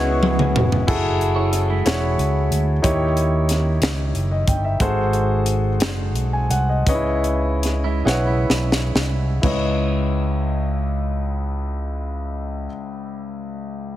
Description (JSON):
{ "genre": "slow gospel", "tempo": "40-62 BPM (dotted quarters)", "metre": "6/8", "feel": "straight", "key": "C# minor", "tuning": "A4 = 440 Hz", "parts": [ { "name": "warm horn section", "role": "melody", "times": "0.0-0.6 s", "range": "E4 to C#5", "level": "-31 LUFS", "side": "equal", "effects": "none" }, { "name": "warm concert grand piano", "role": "accompaniment", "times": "0.0-14.0 s", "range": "C#2 to G#5", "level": "-23 LUFS", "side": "left 1 dB", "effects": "none" }, { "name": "fingered electric bass", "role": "bass", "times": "0.0-12.7 s", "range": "E1 to D#2", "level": "-21 LUFS", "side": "equal", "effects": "none" }, { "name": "crisp fusion drum kit", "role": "drums", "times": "0.2-9.7 s", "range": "crash cymbal, hi-hat, kick drum, snare drum, toms", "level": "-23 LUFS", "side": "equal", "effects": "none" }, { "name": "clean electric guitar", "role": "second line", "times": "1.4-2.6, 7.8-9.4 s", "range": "G#3 to C#5", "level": "-29 LUFS", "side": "right 8 dB", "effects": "none" } ], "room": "small room ambience", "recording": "heavily compressed radio sound", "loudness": "-18 LUFS", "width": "side -13 dB against mid", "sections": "0.9-9.4 A section; 9.4-14.0 B section", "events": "drum fill 0.0-0.9, 8.1-9.4; slowing down 4.8-9.4", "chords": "0.0 C#m9; 0.9 F#m9; 2.8 D#7b9; 4.8 G#7b9; 6.9 C#m9" }